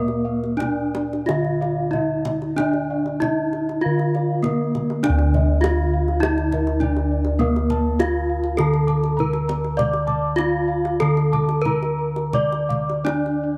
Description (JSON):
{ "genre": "Javanese gamelan", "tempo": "79-102 BPM", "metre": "4/4", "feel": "straight", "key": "D pelog", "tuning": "A4 = 443 Hz", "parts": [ { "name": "gamelan-type bronze metallophone", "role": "melody", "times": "0.0-13.6 s", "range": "Bb3 to D5", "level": "-25 LUFS", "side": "equal", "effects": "none" }, { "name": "gamelan-type bossed gongs", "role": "arpeggios", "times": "0.0-13.5 s", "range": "Bb4 to D6", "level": "-34 LUFS", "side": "equal", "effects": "none" }, { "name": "gamelan-type bronze metallophone", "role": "arpeggios", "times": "0.0-13.6 s", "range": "Bb4 to D6", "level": "-33 LUFS", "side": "equal", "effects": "none" }, { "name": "gamelan-type bossed gongs", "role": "bass", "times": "0.0-13.6 s", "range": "D2 to D5", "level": "-25 LUFS", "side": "equal", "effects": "none" }, { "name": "kendang", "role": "percussion", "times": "0.1-13.3 s", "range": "none", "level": "-31 LUFS", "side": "equal", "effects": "none" } ], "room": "light reverb, studio reverb", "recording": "none", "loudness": "-21 LUFS", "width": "mono", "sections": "0.0-5.0 A section; 5.0-13.6 B section", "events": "none", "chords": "none" }